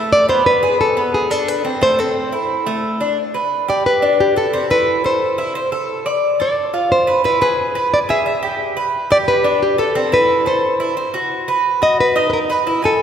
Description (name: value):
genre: latin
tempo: 177 BPM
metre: 4/4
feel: straight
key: A minor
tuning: A4 = 440 Hz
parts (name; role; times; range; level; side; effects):
- Cuban tres; arpeggios; 0.0-13.0 s; A3 to G#5; -18 LUFS; right 1 dB; none
- nylon-string guitar; melody; 0.1-13.0 s; G4 to E5; -16 LUFS; equal; none
room: wet church reverb, RT60 3.4 s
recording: recorded in a church or concert hall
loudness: -14 LUFS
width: side -8 dB against mid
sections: 0.0-3.2 A section; 3.2-13.0 B section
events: none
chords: 0.5 Bm7; 1.8 Am; 3.2 G; 4.5 Am; 5.9 Dm; 7.2 E; 8.6 G; 10.0 Am; 11.3 B